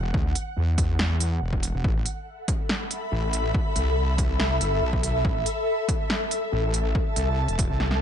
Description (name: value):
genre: heavy wobble dubstep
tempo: 141 BPM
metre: 4/4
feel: half-time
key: unclear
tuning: A4 = 440 Hz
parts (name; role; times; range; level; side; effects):
- wobble bass; bass; 0.0-8.0 s; E1 to E2; -24 LUFS; equal; chorus, overdrive
- ethereal airy pad; texture; 0.0-8.0 s; A4 to B5; -28 LUFS; left 1 dB; ensemble chorus, built-in reverb, sidechain pumping
- electronic kick drum; drums; 0.1-7.7 s; none; -26 LUFS; equal; overdrive
- big-room dance drum kit; drums; 0.4-8.0 s; hi-hat, snare drum; -28 LUFS; right 1 dB; overdrive
room: little or no reverb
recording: nothing above 10.3 kHz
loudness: -22 LUFS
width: side -9 dB against mid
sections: 0.0-8.0 A section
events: drum fill 7.8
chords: 0.0 N.C.; 1.8 Am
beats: | 0.14 0.57 0.99 1.42 | 1.84 2.27 2.69 3.12 | 3.54 3.97 4.40 4.82 | 5.25 5.67 6.10 6.52 | 6.95 7.38 7.80